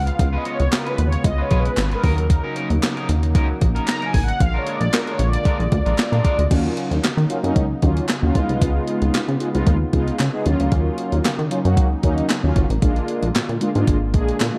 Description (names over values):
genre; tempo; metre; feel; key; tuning
early-eighties boogie funk; 114 BPM; 4/4; straight; Eb minor; A4 = 440 Hz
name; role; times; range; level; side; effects
mellow synth brass; accompaniment; 0.0-14.6 s; Gb3 to Bb5; -26 LUFS; equal; chorus, phaser
brassy analog pad; sustained chords; 0.0-14.6 s; Db3 to F4; -31 LUFS; equal; chorus
plucky analog bass; bass; 0.0-14.5 s; Ab1 to Eb3; -23 LUFS; equal; none
electric guitar at the edge of break-up; riff; 0.1-6.4 s; Gb3 to Db5; -32 LUFS; equal; subtle chorus
clean 12-bit digital drum machine; drums; 0.1-14.5 s; crash cymbal, handclaps, hi-hat, kick drum, snare drum; -23 LUFS; equal; overdrive
group handclap; percussion; 0.7-14.5 s; none; -35 LUFS; equal; none
room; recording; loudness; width
light reverb, digital ambience; dark, warm production; -20 LUFS; mono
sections
0.0-6.5 A section; 6.5-14.6 B section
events
analog polysynth solo 0.0-6.5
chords
0.0 Db7; 2.0 Ebm7; 4.4 Bb7; 6.5 Ebm7; 8.4 Db7; 10.5 Ebm7; 12.8 Bb7